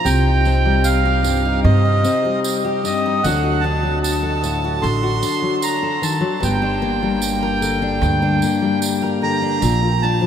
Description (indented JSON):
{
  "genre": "acoustic folk duo or small band",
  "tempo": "75 BPM",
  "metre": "4/4",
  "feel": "straight",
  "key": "G minor",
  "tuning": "A4 = 442 Hz",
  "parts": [
    { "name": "accordion", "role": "melody", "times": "0.0-10.3 s", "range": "Eb5 to C6", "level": "-21 LUFS", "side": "right 3 dB", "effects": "analog delay" },
    { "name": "fingerpicked steel-string acoustic guitar", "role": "accompaniment", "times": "0.0-10.3 s", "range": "G2 to Bb4", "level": "-20 LUFS", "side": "left 4 dB", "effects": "none" },
    { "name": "upright bass", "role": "bass", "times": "0.1-10.3 s", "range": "G1 to G2", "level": "-19 LUFS", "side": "right 1 dB", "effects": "none" },
    { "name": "tambourine", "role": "percussion", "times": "0.1-9.8 s", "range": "none", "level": "-31 LUFS", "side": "right 9 dB", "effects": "none" }
  ],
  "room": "moderate huge ambient reverb, RT60 9.2 s",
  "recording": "dreamy mix soaked in reverb",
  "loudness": "-16 LUFS",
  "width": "side -9 dB against mid",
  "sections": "0.0-10.3 A section",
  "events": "none",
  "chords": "0.1 Cm; 3.2 D; 6.4 Gm; 9.6 Bb",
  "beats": "| 0.05 0.85 1.64 2.44 | 3.23 4.03 4.83 5.63 | 6.43 7.23 8.03 8.83 | 9.63"
}